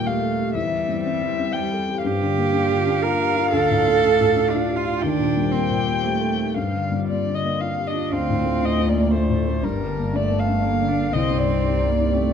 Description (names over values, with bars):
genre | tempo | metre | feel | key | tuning
neoclassical piano and strings | 120 BPM | 3/4 | rubato | G minor | A4 = 440 Hz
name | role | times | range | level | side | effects
muted violin | melody | 0.0-12.3 s | Bb4 to G5 | -26 LUFS | left 4 dB | none
muted cello | second line | 0.0-12.3 s | G3 to Bb4 | -23 LUFS | right 7 dB | none
felt-muted upright piano | accompaniment | 0.0-12.3 s | C2 to A4 | -24 LUFS | left 4 dB | none
hollow soft pad | sustained chords | 0.0-12.3 s | G3 to A5 | -33 LUFS | right 3 dB | chorus
muted double bass | bass | 8.1-12.3 s | G1 to D2 | -24 LUFS | left 1 dB | none
room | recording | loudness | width
moderate recital hall reverb, RT60 1.8 s | minimal, uncompressed stereo recording | -19 LUFS | side -7 dB against mid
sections
0.0-8.1 A section; 8.1-12.3 B section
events
none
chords
0.0 Eb6; 0.5 C/E; 2.0 Gm7; 3.5 Dm; 5.0 Eb6; 6.6 Gm7; 8.1 Dm; 9.6 Gmadd9; 11.1 Cm